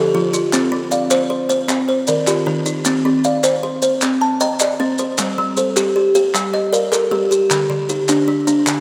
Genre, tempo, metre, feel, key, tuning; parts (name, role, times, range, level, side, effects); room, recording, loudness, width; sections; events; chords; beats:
southern african traditional, mbira-style interlocking cycle; 103 BPM (dotted quarters); 12/8; straight; C dorian; A4 = 440 Hz
buzzing kalimba; arpeggios; 0.0-8.7 s; D3 to A5; -20 LUFS; equal; slapback echo
kalimba; arpeggios; 0.0-8.8 s; D3 to Bb5; -21 LUFS; equal; slapback echo
maracas; percussion; 0.3-8.8 s; -26 LUFS; equal
group handclap; percussion; 0.5-8.8 s; -29 LUFS; equal
wet lush hall reverb, RT60 2.6 s; rough home demo mix; -17 LUFS; mono
0.0-8.8 A section
0.0 F; 0.5 Csus24; 1.7 Eb; 2.9 Cm; 5.2 Gm; 7.5 Ebmaj7/D
| 0.53 1.11 1.70 2.28 | 2.86 3.44 4.02 4.60 | 5.18 5.76 6.34 6.93 | 7.51 8.09 8.67